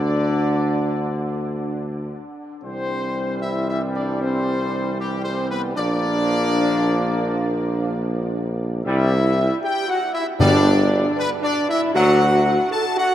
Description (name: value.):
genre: classical.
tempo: 77 BPM.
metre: 4/4.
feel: straight.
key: unclear.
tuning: A4 = 441 Hz.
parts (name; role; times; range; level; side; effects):
warm trumpet section; melody; 0.0-13.1 s; G4 to A5; -24 LUFS; left 2 dB; none.
clear trombone section; sustained chords; 0.0-12.2 s; B2 to Bb3; -28 LUFS; equal; none.
mellow French horn section; sustained chords; 0.0-13.1 s; G3 to A4; -24 LUFS; equal; none.
clear tuba; bass; 0.0-12.6 s; G1 to D2; -22 LUFS; equal; none.
timpani; percussion; 10.4-11.5 s; G2; -23 LUFS; left 1 dB; none.
room: wet huge ambient reverb, RT60 7.1 s.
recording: in a vast, echoing space.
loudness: -18 LUFS.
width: side -11 dB against mid.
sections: 0.0-13.1 A section.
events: none.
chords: 0.0 N.C.; 2.6 C; 5.8 Bb; 8.9 C; 10.4 G; 11.9 D.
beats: 0.28 1.06 1.85 | 2.64 3.43 4.21 4.99 | 5.76 6.54 7.31 8.09 | 8.86 9.63 10.40 11.17 | 11.95 12.72.